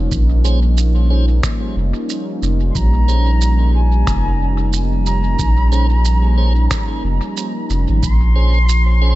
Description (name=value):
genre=ambient dub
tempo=91 BPM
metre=4/4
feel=swing 58% on 16ths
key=Bb dorian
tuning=A4 = 445 Hz
part: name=warm analog pad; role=sustained chords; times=0.0-9.2 s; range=F3 to F4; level=-23 LUFS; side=equal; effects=chorus
part: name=warm sub bass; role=bass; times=0.0-9.2 s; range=F1 to Bb1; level=-14 LUFS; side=equal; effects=none
part: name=electronic kick drum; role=drums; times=0.1-8.2 s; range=none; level=-22 LUFS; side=equal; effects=none
part: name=electronic shaker and finger snaps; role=drums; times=0.1-8.8 s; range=none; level=-27 LUFS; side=right 4 dB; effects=dub echo
part: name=tonewheel organ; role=stabs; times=0.4-9.2 s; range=Db4 to C5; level=-29 LUFS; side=right 4 dB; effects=slow rotary speaker, dub echo
part: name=mellow concert flute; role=melody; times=2.7-9.2 s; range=Ab5 to C6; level=-24 LUFS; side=equal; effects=dub echo
room=little or no reverb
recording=nothing above 7.9 kHz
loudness=-13 LUFS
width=side -17 dB against mid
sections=0.0-8.0 A section; 8.0-9.2 B section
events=none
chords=0.0 Bbm9